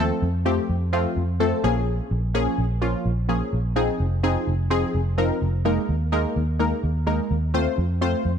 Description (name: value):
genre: dance-pop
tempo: 127 BPM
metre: 4/4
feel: straight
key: F minor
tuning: A4 = 441 Hz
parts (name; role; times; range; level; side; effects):
- punchy chord stab; accompaniment; 0.0-8.3 s; F3 to C5; -24 LUFS; left 1 dB; chorus
- vintage muted fingered electric bass; bass; 0.0-8.4 s; F1 to F2; -23 LUFS; equal; none
room: light reverb, digital ambience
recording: none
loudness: -21 LUFS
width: side -8 dB against mid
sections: 0.0-8.4 A section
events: none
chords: 0.0 F; 1.6 Bbm7; 3.8 Fm7; 5.7 Ebsus4; 7.5 F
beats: 0.46 0.93 1.40 | 1.88 2.35 2.82 3.29 | 3.77 4.24 4.71 5.18 | 5.65 6.13 6.60 7.07 | 7.54 8.02